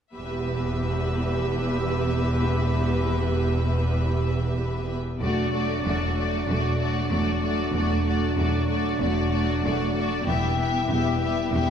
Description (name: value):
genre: cinematic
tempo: 95 BPM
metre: 4/4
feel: straight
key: E minor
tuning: A4 = 440 Hz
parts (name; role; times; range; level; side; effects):
- clear symphonic violin section; second line; 0.2-11.7 s; F#4 to E5; -31 LUFS; left 3 dB; none
- warm symphonic viola section; accompaniment; 0.2-11.7 s; A3 to G4; -30 LUFS; right 2 dB; none
- rich symphonic cello section; bass; 0.2-11.7 s; E2; -29 LUFS; right 1 dB; none
- rich symphonic double bass section; bass; 0.2-11.7 s; E1; -27 LUFS; right 1 dB; none
- warm symphonic violin section; melody; 5.2-11.7 s; D5 to E5; -30 LUFS; left 4 dB; none
- mellow French horn section; sustained chords; 5.2-11.7 s; F#3 to E4; -29 LUFS; equal; none
room: wet scoring stage reverb, RT60 1.9 s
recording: heard from further back in the room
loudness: -22 LUFS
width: side -8 dB against mid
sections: 0.2-5.2 A section; 5.2-11.7 B section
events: build-up 5.2-11.7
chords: 0.2 Em; 5.2 D/E; 10.3 Em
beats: | 0.16 0.79 1.42 2.05 | 2.69 3.32 3.95 4.58 | 5.21 5.84 6.47 7.11 | 7.74 8.37 9.00 9.63 | 10.26 10.90 11.53